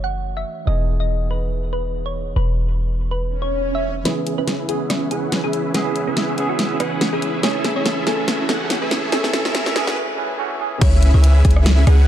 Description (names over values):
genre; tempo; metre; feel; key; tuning
future bass; 142 BPM; 4/4; swing 55% on 16ths, half-time; unclear; A4 = 441 Hz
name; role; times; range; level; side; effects
thumb-piano-like synth pluck; melody; 0.0-12.1 s; F#4 to F#5; -28 LUFS; equal; chorus, phaser, sidechain pumping, dub echo
barky tine electric piano; accompaniment; 0.0-10.8 s; E3 to G#5; -27 LUFS; right 4 dB; medium stereo tremolo, sidechain pumping, ping-pong delay
warm 808-style bass; bass; 0.0-4.0, 10.8-12.1 s; E1 to C#2; -16 LUFS; equal; sidechain pumping
swell and riser; sound effects; 3.3-10.0 s; none; -30 LUFS; equal; none
dense compressed supersaw; riff; 4.1-12.1 s; C#4 to F#5; -24 LUFS; equal; sidechain pumping, low-pass filter
pop drum kit; drums; 4.1-12.0 s; crash cymbal, hi-hat, rim click, snare drum; -23 LUFS; equal; studio reverb
airy dreamy lead; arpeggios; 10.8-12.1 s; E5 to F#5; -30 LUFS; equal; chorus, sidechain pumping
electronic kick drum; drums; 10.8-11.5 s; none; -17 LUFS; equal; overdrive, studio reverb
room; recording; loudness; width
light reverb, digital ambience; dark, warm production, high-pass filter; -17 LUFS; side -11 dB against mid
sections
0.0-4.1 A section; 4.1-10.8 B section; 10.8-12.1 C section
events
swell 3.3-4.1; build-up 4.1-10.8; drum fill 4.1-10.0; filter sweep on supersaw synth 4.1-10.8; filter sweep 4.1-10.8; riser 4.1-10.0; break 10.0-10.8; drop 10.8-12.1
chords
0.0 F#m7; 0.7 Emaj7; 4.1 C#m7; 7.4 Amaj7; 10.6 C#m7